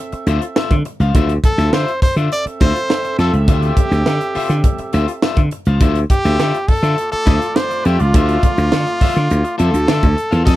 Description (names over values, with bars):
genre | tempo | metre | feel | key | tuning
funk | 103 BPM | 4/4 | straight | D minor | A4 = 444 Hz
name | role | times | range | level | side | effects
warm horn section | second line | 0.0-10.1 s | A3 to E5 | -27 LUFS | right 4 dB | none
electric guitar at the edge of break-up | accompaniment | 0.1-10.6 s | F4 to F5 | -24 LUFS | left 8 dB | none
slap bass | bass | 0.1-10.6 s | C#2 to D3 | -15 LUFS | equal | none
crisp fusion drum kit | drums | 0.1-10.6 s | hi-hat, kick drum, snare drum | -16 LUFS | equal | none
bright trumpet | melody | 1.4-10.6 s | F4 to D5 | -20 LUFS | equal | none
room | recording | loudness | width
little or no reverb | none | -13 LUFS | side -15 dB against mid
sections
0.0-10.5 A section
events
none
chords
0.0 Dm9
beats
0.56 | 1.15 1.73 2.31 2.90 | 3.48 4.07 4.65 5.23 | 5.82 6.40 6.98 7.56 | 8.14 8.73 9.31 9.89 | 10.47